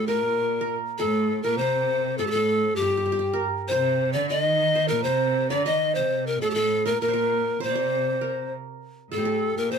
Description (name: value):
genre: Turkish makam ensemble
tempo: 199 BPM (eighths)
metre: 9/8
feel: straight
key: C makam huseyni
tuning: A4 = 440 Hz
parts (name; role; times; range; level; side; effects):
- breathy bright pan flute; melody; 0.0-9.8 s; G4 to Eb5; -24 LUFS; left 3 dB; none
- qanun; second line; 0.0-9.8 s; F4 to Eb5; -30 LUFS; right 7 dB; none
- rich studio cello section; second line; 0.0-9.8 s; G2 to Eb3; -28 LUFS; right 4 dB; none
room: light reverb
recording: close, detailed microphones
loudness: -22 LUFS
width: side -6 dB against mid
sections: 0.0-9.8 A section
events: none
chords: none